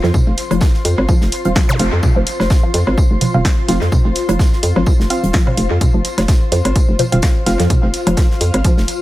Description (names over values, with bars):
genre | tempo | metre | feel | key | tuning
minimal techno | 127 BPM | 4/4 | swing 56% on 16ths | unclear | A4 = 440 Hz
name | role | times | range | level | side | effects
resonant blip pluck | riff | 0.0-8.7 s | F3 | -22 LUFS | equal | phaser, sidechain pumping, analog delay
filtered dub chord stab | stabs | 0.0-7.6 s | C4 to F5 | -24 LUFS | right 2 dB | chorus, analog delay
hollow knocking FM bass | bass | 0.0-8.9 s | Eb1 to F2 | -16 LUFS | equal | tube saturation, sidechain pumping
modern studio drum kit | drums | 0.0-9.0 s | hi-hat, snare drum, tambourine | -30 LUFS | equal | sidechain pumping on hats, high-pass filter on hats, high-pass filter on snare, sidechain pumping on perc, high-pass filter on perc, high-pass filter on room, analog delay
granular cloud pad | texture | 0.0-9.0 s | F4 to C6 | -24 LUFS | left 2 dB | built-in reverb, sidechain pumping
electronic kick drum | drums | 0.1-8.8 s | none | -14 LUFS | equal | none
electronic toms and woodblock | percussion | 0.1-8.6 s | none | -21 LUFS | right 2 dB | overdrive, analog delay
punchy analog drum machine | drums | 0.4-9.0 s | hi-hat, snare drum | -22 LUFS | equal | analog delay
zap | sound effects | 1.7-1.8 s | none | -26 LUFS | equal | none
room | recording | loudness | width
digital ambience | echo-heavy mix | -12 LUFS | side -16 dB against mid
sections
0.0-9.0 A section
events
filter sweep on synth stab 0.0-9.0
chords
0.0 F5